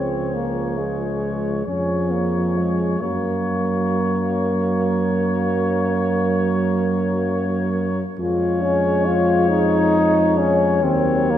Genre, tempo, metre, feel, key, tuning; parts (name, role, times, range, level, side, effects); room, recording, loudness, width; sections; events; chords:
classical, hymn-like piece for brass band; 42-48 BPM (dotted quarters); 12/8; rubato; Db major; A4 = 443 Hz
warm cornet; melody; 0.0-11.4 s; Db5; -28 LUFS; left 5 dB
mellow French horn section; second line; 0.0-11.4 s; Ab4 to Bb4; -27 LUFS; right 4 dB
clear euphonium; accompaniment; 0.0-11.4 s; Ab3 to F4; -22 LUFS; left 2 dB
mellow trombone; accompaniment; 0.0-11.4 s; F3 to Ab3; -29 LUFS; right 3 dB
warm tuba; bass; 0.0-11.4 s; Db2 to Gb2; -22 LUFS; right 1 dB
wet concert hall reverb, RT60 2.4 s; heard from further back in the room; -18 LUFS; side -11 dB against mid
0.0-11.4 A section
0.0 Db; 3.0 Gb; 8.2 Db/F; 10.8 Ebm7